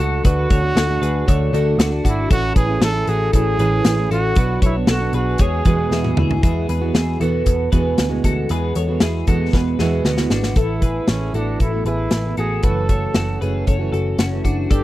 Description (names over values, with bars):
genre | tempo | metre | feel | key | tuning
jangly indie pop | 116 BPM | 4/4 | straight | A major | A4 = 440 Hz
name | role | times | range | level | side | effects
breathy trumpet | melody | 0.0-6.2, 10.6-14.8 s | C#4 to A4 | -24 LUFS | right 2 dB | none
fingerpicked plugged-in steel-string acoustic guitar | accompaniment | 0.0-14.8 s | E2 to A4 | -24 LUFS | right 6 dB | none
twelve-string electric guitar | arpeggios | 0.0-14.8 s | B3 to C#5 | -25 LUFS | left 5 dB | wide subtle chorus
vintage muted picked electric bass | bass | 0.0-14.8 s | F#1 to E2 | -21 LUFS | equal | none
big rock drum kit | drums | 0.2-14.8 s | hi-hat, kick drum, snare drum, toms | -17 LUFS | equal | none
room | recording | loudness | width
little or no reverb | dry, close 1970s-style studio recording | -16 LUFS | side -15 dB against mid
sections
0.0-6.4 A section; 6.4-10.6 B section; 10.6-14.8 C section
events
drum fill 5.9-6.4, 9.5-10.6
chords
0.0 D; 2.3 A; 4.4 Bm; 5.4 Eadd9; 10.6 Asus2; 12.6 F#m7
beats
| 0.25 0.76 1.28 1.79 | 2.31 2.82 3.34 3.85 | 4.37 4.88 5.40 5.92 | 6.43 6.95 7.46 7.98 | 8.50 9.01 9.53 10.05 | 10.57 11.08 11.60 12.12 | 12.64 13.15 13.67 14.19 | 14.71